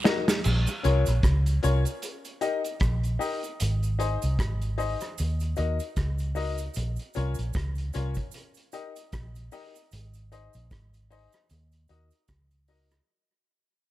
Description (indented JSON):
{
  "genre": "roots reggae",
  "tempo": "76 BPM",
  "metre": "4/4",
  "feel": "swing 57% on 16ths",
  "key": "unclear",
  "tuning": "A4 = 442 Hz",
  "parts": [
    { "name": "clear concert grand piano", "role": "stabs", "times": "0.0-12.9 s", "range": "Db4 to Eb5", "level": "-32 LUFS", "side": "left 5 dB", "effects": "none" },
    { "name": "vintage drum kit", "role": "drums", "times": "0.1-13.1 s", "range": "crash cymbal, hi-hat, kick drum, rim click, snare drum", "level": "-28 LUFS", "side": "equal", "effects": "tape echo" },
    { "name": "cabasa", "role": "percussion", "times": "0.1-13.1 s", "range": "none", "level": "-42 LUFS", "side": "right 9 dB", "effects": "none" },
    { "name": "vintage muted fingered electric bass", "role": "bass", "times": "0.5-13.0 s", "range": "Ab1 to Eb2", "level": "-26 LUFS", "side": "equal", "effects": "none" }
  ],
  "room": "light reverb",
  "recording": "none",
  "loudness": "-25 LUFS",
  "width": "side -15 dB against mid",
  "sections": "0.4-13.1 A section",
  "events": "drum fill 0.0-0.4; fade-out 0.4-13.1",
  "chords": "0.4 Bbm; 2.0 Eb; 3.6 Ab; 5.2 Ebm; 6.8 Bbm; 8.3 Eb; 9.9 Ab; 11.5 Ebm"
}